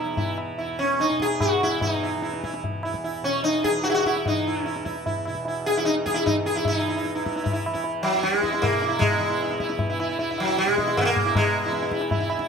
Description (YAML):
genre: indian classical, Hindustani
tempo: 151 BPM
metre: 3/4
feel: straight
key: E raga yaman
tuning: A4 = 439 Hz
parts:
  - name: sitar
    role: melody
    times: 0.0-12.5 s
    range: F#3 to G#4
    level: -23 LUFS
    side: equal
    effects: none
  - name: tanpura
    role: drone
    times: 0.0-12.5 s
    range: E2 to E3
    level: -34 LUFS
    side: right 2 dB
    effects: none
  - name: tabla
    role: percussion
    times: 0.1-12.5 s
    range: none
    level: -29 LUFS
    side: left 1 dB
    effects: none
room: moderate recital hall reverb, RT60 1.4 s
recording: close, detailed microphones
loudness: -22 LUFS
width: side -6 dB against mid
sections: 0.0-6.6 A section; 6.6-12.5 B section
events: speeding up 0.0-12.5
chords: none